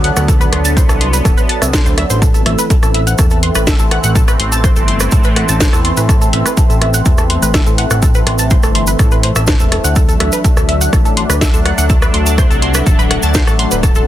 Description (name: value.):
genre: melodic techno.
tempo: 124 BPM.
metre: 4/4.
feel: straight.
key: A dorian.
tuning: A4 = 439 Hz.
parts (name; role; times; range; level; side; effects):
sweeping resonant pad; sustained chords; 0.0-14.1 s; E3 to D4; -20 LUFS; left 1 dB; chorus, vintage 12-bit sampler grit, sidechain pumping.
tight sequenced synth; arpeggios; 0.0-14.0 s; A4 to A6; -20 LUFS; equal; chorus, sidechain pumping, digital delay.
fat analog bass; bass; 0.0-14.0 s; D1 to A2; -16 LUFS; equal; sidechain pumping.
techno drum kit; drums; 0.0-14.1 s; hi-hat, rim click, snare drum; -19 LUFS; equal; sidechain pumping on hats, soft clipping on snare.
warbly tape-like pad; texture; 0.0-14.1 s; D4 to C6; -24 LUFS; right 2 dB; chorus, built-in reverb, sidechain pumping.
cabasa; percussion; 0.2-14.0 s; none; -22 LUFS; right 4 dB; none.
electronic kick drum; drums; 0.3-13.9 s; none; -12 LUFS; equal; none.
room: little or no reverb.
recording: dense, heavily limited modern master.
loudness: -10 LUFS.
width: side -13 dB against mid.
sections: 0.0-14.1 A section.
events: none.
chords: 0.0 D; 2.2 Am; 10.0 D.